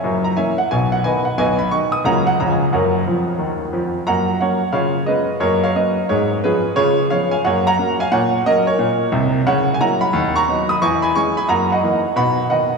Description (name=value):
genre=jazz, stride piano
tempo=178 BPM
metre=4/4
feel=swing 63% on 8ths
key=F# major, B major from 9.5 s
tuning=A4 = 440 Hz
part: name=clear grand piano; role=solo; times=0.0-12.8 s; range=F#1 to D#6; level=-15 LUFS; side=equal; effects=none
room=wet cathedral reverb, RT60 4.4 s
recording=recorded in a church or concert hall, studio ambience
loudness=-15 LUFS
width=side -4 dB against mid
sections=0.0-4.1 A section; 4.1-12.8 B section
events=grand piano fill 3.1-4.1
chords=0.0 F#7; 0.7 B; 2.0 F#/C#; 2.4 C#; 2.7 F#; 4.7 C#7; 5.4 F#; 6.1 C#7/G#; 6.8 C#7; 7.4 F#; 8.1 F#/A#; 9.5 F#7/C#; 10.1 B/D#; 10.8 C#m/E; 11.5 F#6; 12.2 B